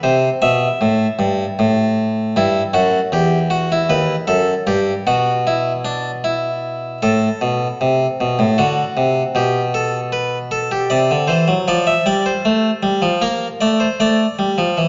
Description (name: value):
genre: classical, baroque-style two-part invention for harpsichord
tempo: 77 BPM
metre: 3/4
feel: straight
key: A minor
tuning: A4 = 440 Hz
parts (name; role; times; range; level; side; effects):
- harpsichord; solo; 0.0-14.9 s; D#2 to E5; -17 LUFS; equal; none
room: wet recital hall reverb, RT60 1.6 s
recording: nothing above 7.5 kHz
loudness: -17 LUFS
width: mono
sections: 0.0-7.0 A section; 7.0-14.9 B section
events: none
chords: 0.0 Am; 1.6 A5; 2.4 Em; 3.9 B/D#; 4.7 Em/G; 6.2 E5/B; 7.0 Am; 8.6 D7; 9.4 G/B; 10.9 C; 11.7 F; 13.2 Bbmaj9; 14.0 Asus4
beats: | 0.03 0.81 1.59 | 2.36 3.14 3.91 | 4.68 5.46 6.24 | 7.02 7.80 8.58 | 9.35 10.13 10.90 | 11.67 12.44 13.22 | 14.00 14.79